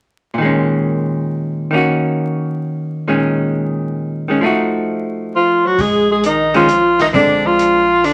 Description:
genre	jazz, small-group swing and bop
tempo	133 BPM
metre	3/4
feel	swing 68% on 8ths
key	Bb minor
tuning	A4 = 440 Hz
part	archtop guitar, miked and amplified	accompaniment	0.3-7.8 s	Bb2 to Gb4	-18 LUFS	equal	none
part	bright alto saxophone	melody	5.4-8.1 s	D4 to Ab4	-14 LUFS	equal	none
part	growling tenor saxophone	second line	5.4-8.1 s	D3 to Ab3	-23 LUFS	equal	none
part	upright bass	bass	5.8-8.1 s	Bb1	-32 LUFS	equal	none
part	vintage drum kit	drums	5.8-8.1 s	hi-hat, kick drum, snare drum	-28 LUFS	equal	none
room	wet studio reverb, RT60 0.7 s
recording	vinyl crackle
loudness	-16 LUFS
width	mono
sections	0.4-5.8 A section; 5.8-8.1 B section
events	none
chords	0.4 Bbm7; 1.7 Ebm7; 3.1 Bbm7; 4.4 F7b9; 5.8 Bb7(no3); 7.1 Bb9

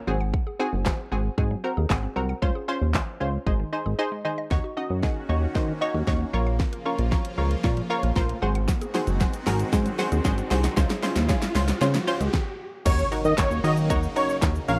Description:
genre	dance-pop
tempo	115 BPM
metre	4/4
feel	straight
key	Eb dorian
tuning	A4 = 440 Hz
part	mallet-like synth pluck	arpeggios	0.0-12.3 s	Eb3 to Gb5	-39 LUFS	equal	chorus, sidechain pumping, tape echo
part	punchy chord stab	accompaniment	0.1-14.8 s	C4 to Eb5	-32 LUFS	equal	chorus, sidechain pumping
part	chorused synth bass	bass	0.1-14.8 s	Gb1 to Eb3	-27 LUFS	equal	sidechain pumping
part	pop drum kit	drums	0.3-14.8 s	crash cymbal, handclaps, hi-hat, kick drum, shaker, snare drum	-28 LUFS	equal	none
part	supersaw pad	sustained chords	4.5-14.8 s	Db3 to Gb4	-38 LUFS	equal	phaser, sidechain pumping
part	riser and impact	sound effects	7.3-14.8 s	none	-39 LUFS	equal	none
part	unison lead	melody	12.9-14.8 s	Db5 to F5	-28 LUFS	equal	sidechain pumping
room	little or no reverb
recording	dry, close 1970s-style studio recording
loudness	-25 LUFS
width	mono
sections	0.0-4.5 A section; 4.5-12.9 B section; 12.9-14.8 C section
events	silent gap 4.0-4.5; build-up 4.5-12.9; drum fill 4.5-12.3; stop 12.3-12.9; drop 12.9-14.8; impact 12.9-14.8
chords	0.1 Ab7; 2.4 Dbmaj7; 3.5 Ab; 4.5 Ebm7; 6.3 Bbm; 8.4 Ab7; 10.8 Dbmaj7; 12.9 Ebm7

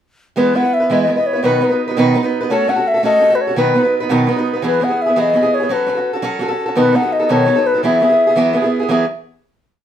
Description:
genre	celtic folk, Celtic jig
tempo	113 BPM (dotted quarters)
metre	6/8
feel	straight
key	E major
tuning	A4 = 443 Hz
part	reedy baroque flute	melody	0.4-9.1 s	B4 to F#5	-15 LUFS	left 2 dB	none
part	picked acoustic archtop guitar	accompaniment	0.4-9.1 s	B2 to B4	-16 LUFS	right 2 dB	none
room	moderate studio reverb, RT60 0.6 s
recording	minimal, uncompressed stereo recording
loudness	-13 LUFS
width	side -10 dB against mid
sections	0.4-8.9 A section; 8.9-9.8 final chord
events	none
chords	0.4 E; 1.4 B; 2.5 F#m/A; 3.6 B; 4.6 Eadd9; 5.7 F#m; 6.8 B7; 7.8 Eadd9

